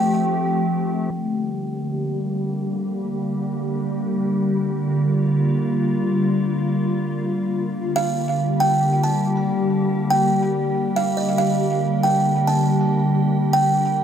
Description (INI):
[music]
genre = hip hop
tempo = free time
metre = none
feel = none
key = G minor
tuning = A4 = 436 Hz
[part]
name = buzzing kalimba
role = melody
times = 0.0-0.6, 8.0-14.0 s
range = Eb5 to A5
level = -22 LUFS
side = right 3 dB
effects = tape echo
[part]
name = glassy FM pad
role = sustained chords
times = 0.0-14.0 s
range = D3 to G4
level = -20 LUFS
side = left 1 dB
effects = ensemble chorus, built-in reverb, low-pass filter
[sound]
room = light reverb, small room ambience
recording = echo-heavy mix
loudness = -18 LUFS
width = side -8 dB against mid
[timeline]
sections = 0.0-1.1 A section; 1.1-8.0 B section; 8.0-14.0 A section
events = filter sweep on ambient pad 1.1-8.0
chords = 0.0 Fadd9; 1.1 Gm